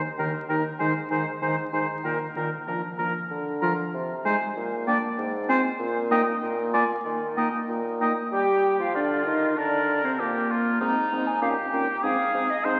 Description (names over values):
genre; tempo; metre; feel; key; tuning
quick classical-period movement for wind quintet; 96 BPM; 2/4; straight; Eb major; A4 = 439 Hz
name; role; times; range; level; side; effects
bright silver concert flute; melody; 0.2-12.8 s; Bb4 to Bb5; -33 LUFS; equal; none
clear oboe; second line; 0.2-12.8 s; Eb4 to Eb5; -30 LUFS; equal; none
dark French horn; accompaniment; 0.2-12.8 s; Eb3 to G4; -32 LUFS; equal; none
warm clarinet; accompaniment; 0.2-12.8 s; Bb3 to G4; -35 LUFS; equal; none
mellow bassoon; bass; 0.2-12.8 s; Eb2 to G3; -33 LUFS; equal; none
room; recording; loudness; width
wet concert hall reverb, RT60 2.4 s; very old 78 rpm record, vinyl crackle; -26 LUFS; mono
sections
0.0-8.3 A section; 8.3-12.8 B section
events
none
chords
0.2 Eb5; 0.8 Ab; 2.0 Eb5/Bb; 2.7 Bb; 3.3 Bb/D; 3.9 Ab/C; 4.6 Gm/Bb; 5.2 Fm/Ab; 5.8 Eb/Bb; 6.4 Bb7(no3); 7.1 Eb; 8.3 Fsus2; 9.0 Dm; 9.6 Bb69; 10.8 Ab; 11.4 Eb7/Bb; 12.0 Ab